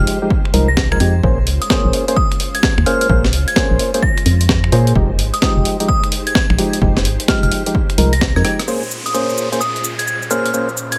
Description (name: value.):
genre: UK garage, two-step garage.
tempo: 129 BPM.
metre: 4/4.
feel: swing 64% on 16ths.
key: Bb dorian.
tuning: A4 = 440 Hz.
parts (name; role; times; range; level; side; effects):
glassy synth bell; melody; 0.0-11.0 s; Eb6 to Bb6; -25 LUFS; equal; chorus, digital delay.
soft string machine; sustained chords; 0.0-11.0 s; Bb2 to C5; -32 LUFS; equal; ensemble chorus, sidechain pumping.
percussive organ stab; stabs; 0.0-10.7 s; F3 to C5; -22 LUFS; equal; analog chorus, digital delay.
organ-like FM bass; bass; 0.0-8.4 s; F1 to Bb2; -17 LUFS; equal; none.
breakbeat sampler-style drum kit; drums; 0.1-11.0 s; cabasa, finger snaps, hi-hat, rim click, snare drum; -22 LUFS; equal; none.
electronic kick drum; drums; 0.3-8.3 s; none; -21 LUFS; equal; overdrive.
downlifter; sound effects; 8.7-11.0 s; none; -29 LUFS; equal; none.
room: light reverb.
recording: none.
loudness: -16 LUFS.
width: mono.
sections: 0.0-8.7 A section; 8.7-11.0 B section.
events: drum fill 8.3-8.7; band accent 8.6; filter sweep on string machine 8.7-11.0.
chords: 0.0 Fm9; 1.2 Bbm9; 5.0 Fm9; 8.7 Bbm9.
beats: 0.31 0.77 | 1.24 1.70 2.17 2.63 | 3.10 3.56 4.03 4.49 | 4.96 5.42 5.89 6.35 | 6.82 7.28 7.75 8.21 | 8.68 9.14 9.61 10.07 | 10.54.